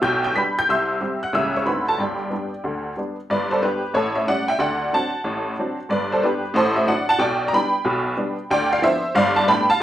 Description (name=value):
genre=jazz, stride piano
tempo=184 BPM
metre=4/4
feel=swing 65% on 8ths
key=G major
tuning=A4 = 440 Hz
part: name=honky-tonk upright piano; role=solo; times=0.0-9.8 s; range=G1 to B6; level=-18 LUFS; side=equal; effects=none
room=moderate club reverb, RT60 0.6 s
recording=minimal, uncompressed stereo recording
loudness=-19 LUFS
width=side -12 dB against mid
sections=0.0-3.3 A section; 3.3-9.8 B section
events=none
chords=0.0 G/B; 0.7 C; 1.3 C#dim7; 1.7 D7b9; 2.0 G; 3.9 A7; 4.6 D7; 5.9 G; 6.6 D7/A; 7.2 G/B; 8.5 Dm13; 9.2 G9